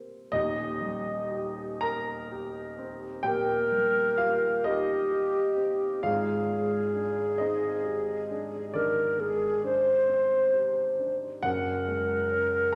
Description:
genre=classical, impressionist duo for flute and grand piano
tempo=38-46 BPM (dotted quarters)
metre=12/8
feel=rubato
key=unclear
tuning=A4 = 440 Hz
part: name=dark grand piano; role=accompaniment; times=0.0-12.8 s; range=Eb1 to Bb5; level=-34 LUFS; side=equal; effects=none
part: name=mellow hollow concert flute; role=melody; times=3.3-12.8 s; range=G4 to C5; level=-28 LUFS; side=equal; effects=none
room=wet recital hall reverb, RT60 1.6 s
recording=none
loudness=-28 LUFS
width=mono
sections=0.3-12.8 A section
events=none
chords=0.3 Eb6; 6.0 Abmaj7#11; 11.4 Gbadd9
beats=| 0.32 1.84 3.26 4.67 | 6.04 7.41 8.75 10.09 | 11.44

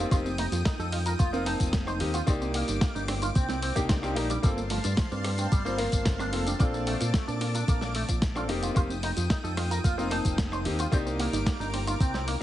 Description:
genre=nu-disco, nu disco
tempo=111 BPM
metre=4/4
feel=straight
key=C dorian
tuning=A4 = 441 Hz
part: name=clear grand piano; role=accompaniment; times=0.0-12.4 s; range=Bb3 to A5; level=-33 LUFS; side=left 2 dB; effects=ping-pong delay
part: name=lush unison pad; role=sustained chords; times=0.0-12.4 s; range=Bb4 to Eb6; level=-40 LUFS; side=left 1 dB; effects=chorus, sidechain pumping
part: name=wide unison pluck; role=arpeggios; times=0.0-12.3 s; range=A3 to C5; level=-37 LUFS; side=right 3 dB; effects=sidechain pumping, ping-pong delay
part: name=electric guitar with an envelope filter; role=riff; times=0.0-12.3 s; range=F3 to C5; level=-35 LUFS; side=right 1 dB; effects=analog chorus, ping-pong delay
part: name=fingered electric bass with an envelope filter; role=bass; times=0.0-12.3 s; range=F1 to Bb2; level=-32 LUFS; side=equal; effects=sidechain pumping
part: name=dusty soul sampler-style drum kit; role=drums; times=0.1-12.4 s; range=hi-hat, rim click, snare drum, tambourine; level=-34 LUFS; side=equal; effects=none
part: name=electronic kick drum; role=drums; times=0.1-12.1 s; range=none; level=-26 LUFS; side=equal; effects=none
room=light reverb, digital ambience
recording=heavily compressed radio sound, nothing above 10.7 kHz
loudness=-25 LUFS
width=side -13 dB against mid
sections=0.0-12.4 A section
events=none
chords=0.0 F9sus4; 2.3 Cm9; 4.4 Gm11; 6.6 Bbmaj7; 8.5 F9sus4; 10.9 Cm9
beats=| 0.11 0.65 1.19 1.73 | 2.27 2.81 3.35 3.90 | 4.43 4.98 5.52 6.06 | 6.60 7.14 7.68 8.22 | 8.76 9.30 9.84 10.38 | 10.92 11.46 12.00

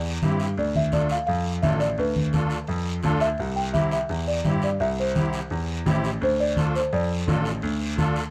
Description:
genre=latin, cumbia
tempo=170 BPM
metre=4/4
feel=straight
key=unclear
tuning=A4 = 441 Hz
part: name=buzzing marimba with soft mallets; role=melody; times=0.0-8.3 s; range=B4 to G5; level=-29 LUFS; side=equal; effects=none
part: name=warm baby grand piano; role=bass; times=0.0-8.2 s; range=A1 to G2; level=-29 LUFS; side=equal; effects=none
part: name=musette accordion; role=accompaniment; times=0.2-8.2 s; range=C4 to A4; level=-34 LUFS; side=equal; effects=none
part: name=congas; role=percussion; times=0.2-8.2 s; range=none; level=-28 LUFS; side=equal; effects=none
part: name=guiro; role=percussion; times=0.2-8.3 s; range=none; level=-41 LUFS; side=equal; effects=none
room=little or no reverb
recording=close, detailed microphones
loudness=-24 LUFS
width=mono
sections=0.0-8.3 A section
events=none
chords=0.0 C; 0.6 Dm; 3.4 C; 6.2 Dm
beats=0.22 | 0.57 0.93 1.28 1.63 | 1.99 2.34 2.69 3.04 | 3.40 3.75 4.10 4.45 | 4.81 5.16 5.51 5.86 | 6.22 6.57 6.92 7.27 | 7.63 7.98

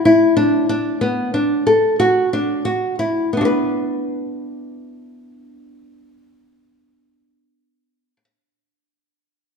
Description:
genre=contemporary instrumental, contemporary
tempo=88-94 BPM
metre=5/4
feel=straight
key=B minor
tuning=A4 = 440 Hz
part: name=nylon-string guitar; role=arpeggios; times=0.1-8.2 s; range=B3 to B4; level=-16 LUFS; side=left 1 dB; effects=none
room=moderate recital hall reverb, RT60 1.6 s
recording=dark, warm production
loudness=-15 LUFS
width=side -5 dB against mid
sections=0.0-3.3 A section; 3.3-6.7 B section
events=slowing down 0.0-3.3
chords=0.1 Bm (rootless); 3.3 Bm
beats=| 0.06 0.70 1.34 2.00 2.66 | 3.34 4.02 4.70 5.38 6.07

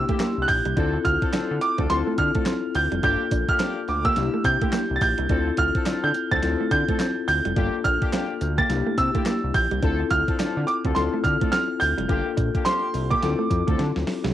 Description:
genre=R&B, new jack swing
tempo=106 BPM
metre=4/4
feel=swing 60% on 16ths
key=D minor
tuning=A4 = 440 Hz
part: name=clear concert grand piano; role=melody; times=0.0-14.0 s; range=C6 to A6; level=-25 LUFS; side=right 2 dB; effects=cassette tape
part: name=mellow tine electric piano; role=accompaniment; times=0.0-14.3 s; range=Bb3 to A4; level=-27 LUFS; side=left 8 dB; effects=medium stereo tremolo, cassette tape, plate reverb
part: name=fat analog bass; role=bass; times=0.0-14.3 s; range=F1 to D3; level=-27 LUFS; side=equal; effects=none
part: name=direct-recorded clean electric guitar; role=riff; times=0.1-14.3 s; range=G3 to F4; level=-30 LUFS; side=right 9 dB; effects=wide subtle chorus, cassette tape
part: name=dark horn section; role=stabs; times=0.1-13.9 s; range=Bb3 to A4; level=-35 LUFS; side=left 7 dB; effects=cassette tape, tape echo, plate reverb
part: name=crisp 8-bit digital drum machine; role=drums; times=0.1-14.3 s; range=handclaps, hi-hat, kick drum, snare drum, tambourine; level=-26 LUFS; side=equal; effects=none
room=light reverb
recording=home recording on cassette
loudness=-20 LUFS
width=side -12 dB against mid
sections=0.0-14.3 A section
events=drum fill 13.8-14.3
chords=0.0 C7; 0.8 Dm7; 3.0 Gm7; 4.2 C7; 5.3 Dm7; 7.6 Gm7; 8.7 C7; 9.8 Dm7; 12.1 Gm7; 13.2 Dm7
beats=0.20 | 0.77 1.34 1.90 2.47 | 3.04 3.60 4.17 4.73 | 5.30 5.87 6.43 7.00 | 7.56 8.13 8.70 9.26 | 9.83 10.39 10.96 11.53 | 12.09 12.66 13.22 13.79

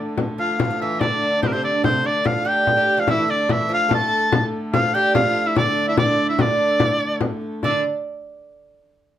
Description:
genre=medieval dance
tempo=145 BPM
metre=3/4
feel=straight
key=D minor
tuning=A4 = 439 Hz
part: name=warm hurdy-gurdy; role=drone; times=0.0-7.7 s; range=D3 to A3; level=-28 LUFS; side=equal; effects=none
part: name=frame drum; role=percussion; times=0.2-7.8 s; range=none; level=-22 LUFS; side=left 3 dB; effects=none
part: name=bright shawm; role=melody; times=0.4-7.8 s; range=Bb4 to A5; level=-20 LUFS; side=equal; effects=none
part: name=clear fiddle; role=second line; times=0.4-7.8 s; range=C4 to A4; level=-29 LUFS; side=left 2 dB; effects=none
part: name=lute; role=second line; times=0.4-7.8 s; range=C3 to A3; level=-25 LUFS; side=right 4 dB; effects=none
room=wet studio reverb, RT60 0.5 s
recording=band playing live in one room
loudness=-17 LUFS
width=side -11 dB against mid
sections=0.0-7.6 A section; 7.6-8.9 B section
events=none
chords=none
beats=| 0.18 0.60 1.01 | 1.43 1.84 2.26 | 2.67 3.09 3.50 | 3.91 4.33 4.74 | 5.15 5.57 5.98 | 6.39 6.80 7.21 | 7.62

